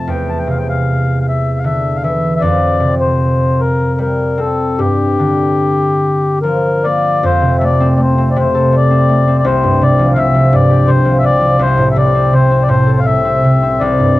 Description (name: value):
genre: celtic folk, Celtic slow air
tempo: 70-87 BPM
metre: 3/4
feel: rubato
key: unclear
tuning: A4 = 440 Hz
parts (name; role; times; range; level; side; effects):
- mellow accordion; melody; 0.0-14.2 s; G4 to A5; -15 LUFS; left 3 dB; cassette tape
- concert harp; accompaniment; 0.0-14.2 s; C2 to A4; -12 LUFS; right 1 dB; cassette tape
room: light reverb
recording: home recording on cassette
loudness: -11 LUFS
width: side -17 dB against mid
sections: 0.0-7.2 A section; 7.2-14.2 B section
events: none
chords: 0.1 Cadd9/E; 2.4 Fsus2; 4.8 Gm7; 7.2 F; 9.5 Csus4; 11.6 Am/C